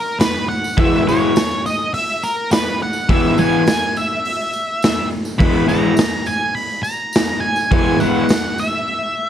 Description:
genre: garage rock duo or trio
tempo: 104 BPM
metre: 4/4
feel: straight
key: unclear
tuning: A4 = 439 Hz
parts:
  - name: octave-fuzz lead guitar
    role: melody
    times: 0.0-9.3 s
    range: A#4 to B5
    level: -20 LUFS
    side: right 1 dB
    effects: distortion
  - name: tambourine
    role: percussion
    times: 0.1-8.8 s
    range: none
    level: -36 LUFS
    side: right 4 dB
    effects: none
  - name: raw garage drum kit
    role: drums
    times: 0.2-8.4 s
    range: hi-hat, kick drum, snare drum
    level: -19 LUFS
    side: equal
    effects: none
  - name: raw garage guitar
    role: riff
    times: 0.8-8.2 s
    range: E3 to E4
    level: -15 LUFS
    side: left 1 dB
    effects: overdrive
room: moderate club reverb, RT60 0.7 s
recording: none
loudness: -15 LUFS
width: side -10 dB against mid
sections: 0.0-9.3 A section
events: none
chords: 0.0 E

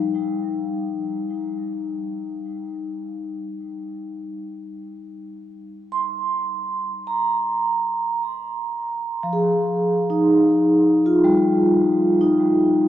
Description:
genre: ambient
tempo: free time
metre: none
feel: none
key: unclear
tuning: A4 = 440 Hz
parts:
  - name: vibraphone with soft mallets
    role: solo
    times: 0.0-12.9 s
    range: F3 to C6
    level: -19 LUFS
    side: equal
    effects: tape echo
room: wet cathedral reverb, RT60 6.7 s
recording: worn, warbling old tape, cassette tape, warbly pitch drift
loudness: -19 LUFS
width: side -12 dB against mid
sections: 0.0-12.9 A section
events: none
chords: 0.0 N.C.; 6.7 Fm7

